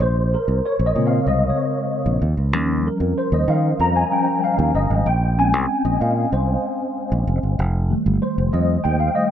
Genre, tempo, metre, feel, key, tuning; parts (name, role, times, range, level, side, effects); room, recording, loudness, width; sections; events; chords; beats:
polished 1980s jazz-funk pop; 95 BPM; 4/4; straight; Bb dorian; A4 = 439 Hz
mellow tine electric piano; accompaniment; 0.0-9.3 s; Db3 to Bb5; -20 LUFS; left 1 dB; medium stereo tremolo, ensemble chorus
fingered electric bass; bass; 0.0-9.1 s; F1 to Eb3; -19 LUFS; equal
light reverb, digital ambience; -17 LUFS; side -10 dB against mid
0.0-9.3 A section
tine electric piano solo 0.0-9.3
0.0 Bbm9; 2.2 Eb7; 5.1 Bbm9; 7.6 F9
| 0.01 0.64 1.27 1.91 | 2.54 3.17 3.80 4.43 | 5.06 5.70 6.33 6.96 | 7.59 8.22 8.85